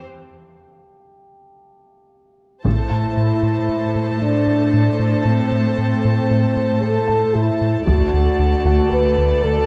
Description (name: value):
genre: cinematic, hybrid orchestral and electronic film score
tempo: 115 BPM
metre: 5/4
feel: straight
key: A minor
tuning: A4 = 441 Hz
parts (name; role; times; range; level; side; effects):
- dark grand piano; texture; 0.0-9.7 s; F#4 to A5; -33 LUFS; equal; digital delay
- clear symphonic cello section; bass; 2.6-9.7 s; D2 to A2; -24 LUFS; equal; none
- taiko ensemble; drums; 2.6-3.7, 7.9-8.9 s; none; -26 LUFS; equal; none
- warm symphonic violin section; second line; 2.7-9.7 s; C5 to A5; -30 LUFS; equal; none
- rich chamber viola section; accompaniment; 2.7-9.7 s; A3 to A4; -33 LUFS; equal; none
- mellow French horn section; sustained chords; 2.7-9.7 s; C4 to B4; -22 LUFS; equal; none
- round analog bass; riff; 2.7-9.6 s; D2 to A3; -23 LUFS; equal; none
room: moderate scoring stage reverb, RT60 2.0 s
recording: none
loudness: -18 LUFS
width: mono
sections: 0.0-2.7 A section; 2.7-9.7 A section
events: break 0.0-2.7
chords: 0.0 N.C.; 2.7 Am; 7.9 D